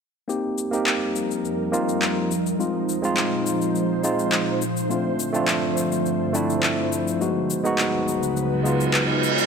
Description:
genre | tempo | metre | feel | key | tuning
sunset chillout | 104 BPM | 4/4 | straight | F dorian | A4 = 440 Hz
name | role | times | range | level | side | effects
barky tine electric piano | accompaniment | 0.3-9.5 s | Ab3 to G4 | -23 LUFS | equal | overdrive, auto-pan, low-pass filter, ping-pong delay
ethereal airy pad | sustained chords | 0.9-9.5 s | Db2 to C5 | -25 LUFS | right 1 dB | ensemble chorus, built-in reverb
electronic cabasa and handclaps | drums | 0.3-9.5 s | none | -26 LUFS | left 2 dB | overdrive
reverse cymbal | sound effects | 8.6-9.5 s | none | -24 LUFS | right 5 dB | none
room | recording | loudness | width
moderate lush hall reverb, RT60 1.9 s | none | -20 LUFS | side -6 dB against mid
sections
0.3-9.5 A section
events
filter sweep on ambient pad 0.3-9.5; reverse cymbal 8.6-9.5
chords
0.3 F9sus4; 2.3 Bb9sus4; 4.6 G9sus4; 7.2 Db9sus4

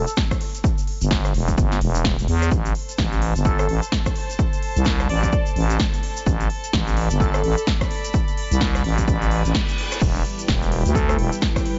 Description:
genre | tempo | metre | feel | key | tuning
bass house | 128 BPM | 4/4 | swing 60% on 16ths | unclear | A4 = 440 Hz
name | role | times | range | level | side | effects
airy dreamy lead | melody | 0.0-0.1, 3.5-7.6, 10.9-11.2 s | A4 to D5 | -32 LUFS | equal | chorus, digital delay
growling FM bass | bass | 0.0-11.3 s | E1 to E2 | -23 LUFS | equal | tube saturation, sidechain pumping
big-room dance drum kit | drums | 0.1-11.8 s | crash cymbal, hi-hat, rim click, snare drum | -30 LUFS | equal | overdrive
tube shaker | percussion | 0.1-11.6 s | none | -39 LUFS | equal | none
electronic kick drum | drums | 0.2-11.6 s | none | -25 LUFS | equal | overdrive
rich chamber string section | texture | 2.7-11.8 s | E4 to B5 | -35 LUFS | equal | sidechain pumping
reverse cymbal | sound effects | 9.3-10.0 s | none | -33 LUFS | equal | none
dark analog pad | sustained chords | 10.0-11.8 s | G3 to B4 | -32 LUFS | equal | chorus, sidechain pumping
room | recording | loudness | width
little or no reverb | nothing above 7.6 kHz | -21 LUFS | mono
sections
0.0-11.8 A section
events
reverse cymbal 9.3-10.0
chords
0.0 Em; 2.5 Am; 10.0 Em

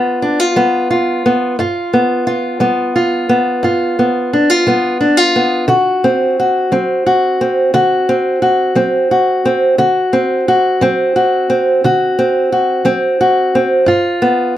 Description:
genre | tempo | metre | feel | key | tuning
blues | 59 BPM (dotted quarters) | 12/8 | straight | unclear | A4 = 440 Hz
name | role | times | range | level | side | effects
fingerpicked old ladder-braced acoustic guitar | solo | 0.0-14.6 s | G2 to F#4 | -11 LUFS | equal | none
room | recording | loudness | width
moderate studio ambience, RT60 0.5 s | none | -11 LUFS | side -12 dB against mid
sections
0.0-14.6 A section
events
none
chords
0.0 G7; 5.7 D7; 13.9 G7

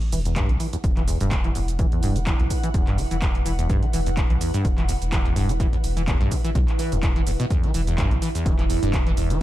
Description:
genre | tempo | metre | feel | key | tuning
acid house | 126 BPM | 4/4 | swing 55% on 16ths | E minor | A4 = 440 Hz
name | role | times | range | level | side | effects
punchy analog drum machine | drums | 0.0-9.4 s | handclaps, hi-hat, shaker | -32 LUFS | right 1 dB | none
ethereal airy pad | texture | 0.6-9.4 s | E4 to F#5 | -32 LUFS | right 3 dB | ensemble chorus, built-in reverb, phaser, sidechain pumping
acid bass, saw | riff | 0.1-9.4 s | E2 to E3 | -26 LUFS | equal | lush chorus, digital delay
warm sub bass | bass | 0.1-9.4 s | E1 to B1 | -25 LUFS | equal | sidechain pumping
electronic kick drum | drums | 0.4-9.0 s | none | -23 LUFS | equal | none
room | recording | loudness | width
light reverb | dark, warm production | -20 LUFS | side -14 dB against mid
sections
0.0-9.4 A section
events
none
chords
0.0 Em

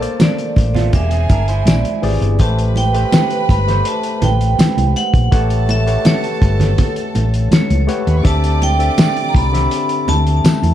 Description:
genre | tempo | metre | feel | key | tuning
lush 1970s-style soul | 82 BPM | 4/4 | straight | A minor | A4 = 440 Hz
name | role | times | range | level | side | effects
vibraphone with hard mallets | melody | 0.0-10.7 s | C#5 to B5 | -21 LUFS | right 3 dB | tape echo
warm studio violin section | second line | 0.0-10.4 s | G4 to D6 | -27 LUFS | right 1 dB | none
barky tine electric piano | accompaniment | 0.0-10.7 s | D3 to F#5 | -22 LUFS | left 4 dB | overdrive, wide subtle chorus
hollow-body short-scale fingered electric bass | bass | 0.0-10.7 s | E1 to E2 | -15 LUFS | equal | none
cloth-damped thuddy drum kit | drums | 0.0-10.7 s | hi-hat, kick drum, snare drum | -15 LUFS | equal | none
congas | percussion | 0.2-10.7 s | none | -23 LUFS | right 3 dB | none
tambourine | percussion | 0.2-10.6 s | none | -34 LUFS | right 7 dB | none
electric guitar through a small old amp | riff | 0.8-2.4 s | A3 to B#4 | -26 LUFS | right 9 dB | none
room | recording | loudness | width
little or no reverb | dark, warm production | -12 LUFS | side -11 dB against mid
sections
0.0-2.4 A section; 2.4-10.7 A section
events
none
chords
0.0 Bbmaj9; 0.9 E7alt; 2.4 Am9; 5.3 A13; 8.2 D9sus4

